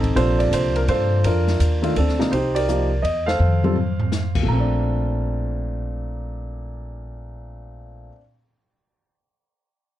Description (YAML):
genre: jazz piano trio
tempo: 167 BPM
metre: 3/4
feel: swing 65% on 8ths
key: Bb major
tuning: A4 = 440 Hz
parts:
  - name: warm concert grand piano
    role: melody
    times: 0.0-8.2 s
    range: Bb2 to Bb5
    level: -22 LUFS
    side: right 1 dB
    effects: none
  - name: upright bass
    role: bass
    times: 0.0-8.1 s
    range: A1 to G2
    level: -22 LUFS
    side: equal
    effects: none
  - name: open jazz drum kit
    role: drums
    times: 0.0-4.4 s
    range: crash cymbal, hi-hat, kick drum, ride cymbal, snare drum, toms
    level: -27 LUFS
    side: left 1 dB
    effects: none
room: light reverb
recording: dark, warm production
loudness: -18 LUFS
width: side -13 dB against mid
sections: 0.0-2.3 A section; 2.3-4.5 B section; 4.5-6.6 C section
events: drum fill 3.4-4.1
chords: 0.2 Bbmaj9; 2.3 Cm7; 3.4 F; 4.5 Bbmaj9